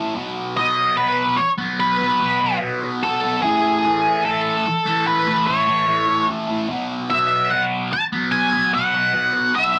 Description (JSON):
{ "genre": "rock", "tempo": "73 BPM", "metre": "4/4", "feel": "straight", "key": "unclear", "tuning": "A4 = 440 Hz", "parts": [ { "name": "fuzz guitar", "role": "riff", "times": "0.0-9.8 s", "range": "A2 to B3", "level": "-24 LUFS", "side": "equal", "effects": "distortion, phaser" }, { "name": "octave-fuzz lead guitar", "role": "melody", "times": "0.6-9.8 s", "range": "G#4 to A5", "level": "-20 LUFS", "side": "equal", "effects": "distortion" } ], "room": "moderate club reverb, RT60 0.6 s", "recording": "nothing above 10.7 kHz", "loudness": "-19 LUFS", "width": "mono", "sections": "0.0-9.8 A section", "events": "none", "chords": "0.2 B5; 3.4 Amaj7; 6.7 B5", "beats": "| 0.16 0.97 1.79 2.61 | 3.42 4.24 5.06 5.88 | 6.69 7.51 8.33 9.14" }